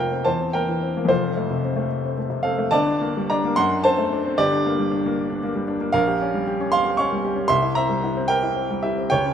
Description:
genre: classical, romantic character piece for solo piano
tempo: 69-79 BPM (dotted quarters)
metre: 6/8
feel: rubato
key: unclear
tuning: A4 = 443 Hz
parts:
  - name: warm baby grand piano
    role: solo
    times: 0.0-9.3 s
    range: F1 to Db6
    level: -19 LUFS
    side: equal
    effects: none
room: moderate scoring stage reverb, RT60 1.9 s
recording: close, detailed microphones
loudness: -19 LUFS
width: side -8 dB against mid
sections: 0.0-9.3 A section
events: none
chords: 0.3 C7/E; 1.1 F; 2.7 Gm; 3.6 D7/F#; 4.4 Gm; 5.9 Gm7b5/Bb; 7.5 C7

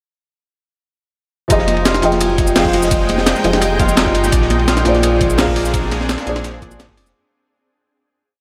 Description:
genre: liquid drum and bass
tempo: 170 BPM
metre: 4/4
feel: straight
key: F dorian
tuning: A4 = 440 Hz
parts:
  - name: felt-muted upright piano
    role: accompaniment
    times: 1.5-7.2 s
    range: F3 to G5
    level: -21 LUFS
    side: equal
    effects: analog chorus, diffuse ambient delay
  - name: shimmering ambient pad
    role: sustained chords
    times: 2.3-7.1 s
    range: Ab3 to G5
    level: -26 LUFS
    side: equal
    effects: chorus, built-in reverb, sidechain pumping
  - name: concert harp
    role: arpeggios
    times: 1.5-8.4 s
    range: D4 to Eb5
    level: -22 LUFS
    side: equal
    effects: diffuse ambient delay
  - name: warm sub bass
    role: bass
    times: 1.5-7.1 s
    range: F1 to Bb1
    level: -23 LUFS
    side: equal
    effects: none
  - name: breakbeat sampler-style drum kit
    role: drums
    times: 1.5-7.1 s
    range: hi-hat, shaker, snare drum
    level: -22 LUFS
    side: equal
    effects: none
  - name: crunchy breakbeat drum kit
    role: drums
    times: 1.5-7.1 s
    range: hi-hat, ride cymbal, snare drum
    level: -27 LUFS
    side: equal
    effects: high-pass filter on cymbals, high-pass filter on hats, high-pass filter on snare, high-pass filter on room
  - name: electronic kick drum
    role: drums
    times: 1.5-7.0 s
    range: none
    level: -21 LUFS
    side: equal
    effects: overdrive
  - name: bongos and congas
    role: percussion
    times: 1.6-7.1 s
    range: none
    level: -30 LUFS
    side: equal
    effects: none
room: moderate cathedral reverb, RT60 6.3 s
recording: dreamy mix soaked in reverb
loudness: -15 LUFS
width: mono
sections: 1.5-7.1 drop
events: drop 1.5-7.1; fade-out 5.3-7.1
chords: 1.5 Fm7; 4.3 Bb7

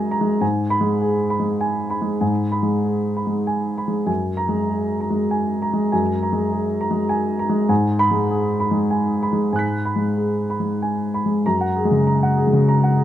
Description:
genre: neoclassical minimalist piano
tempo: 93-102 BPM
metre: 3/4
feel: rubato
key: F# major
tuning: A4 = 442 Hz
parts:
  - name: warm baby grand piano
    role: solo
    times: 0.0-13.0 s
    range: F#2 to B6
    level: -18 LUFS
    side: equal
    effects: none
room: moderate studio reverb, RT60 0.6 s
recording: rough home demo mix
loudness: -18 LUFS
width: side -11 dB against mid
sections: 0.0-11.4 A section; 11.4-13.0 A section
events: none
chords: 0.4 G#m; 4.1 F#add9; 7.7 G#m7; 11.4 F#add9

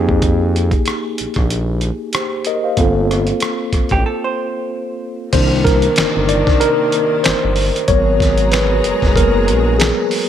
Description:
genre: R&B, neo-soul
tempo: 94 BPM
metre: 4/4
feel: swing 55% on 16ths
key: C minor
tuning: A4 = 440 Hz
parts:
  - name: mellow tine electric piano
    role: accompaniment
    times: 0.0-10.3 s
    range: Eb3 to F5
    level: -17 LUFS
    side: left 1 dB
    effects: medium stereo tremolo
  - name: smooth synth bass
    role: bass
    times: 0.0-9.9 s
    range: Gb1 to F2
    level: -18 LUFS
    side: equal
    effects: none
  - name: dusty soul sampler-style drum kit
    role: drums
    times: 0.1-10.3 s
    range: crash cymbal, finger snaps, hi-hat, kick drum, rim click, snare drum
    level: -18 LUFS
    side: equal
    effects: none
  - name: vintage hollow-body jazz guitar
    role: second line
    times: 3.9-5.2 s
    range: G4 to C5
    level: -22 LUFS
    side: right 3 dB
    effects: none
  - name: rich studio string section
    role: sustained chords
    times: 5.3-10.3 s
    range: C3 to Bb5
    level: -22 LUFS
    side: left 2 dB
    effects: none
room: moderate plate reverb, RT60 2.3 s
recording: dreamy mix soaked in reverb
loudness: -13 LUFS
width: side -10 dB against mid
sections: 0.0-5.3 A section; 5.3-10.3 B section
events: break 4.1-5.3; tine electric piano solo 5.3-10.3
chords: 0.0 Fm11; 2.8 Gm11; 5.3 Cm9; 7.9 Abm9

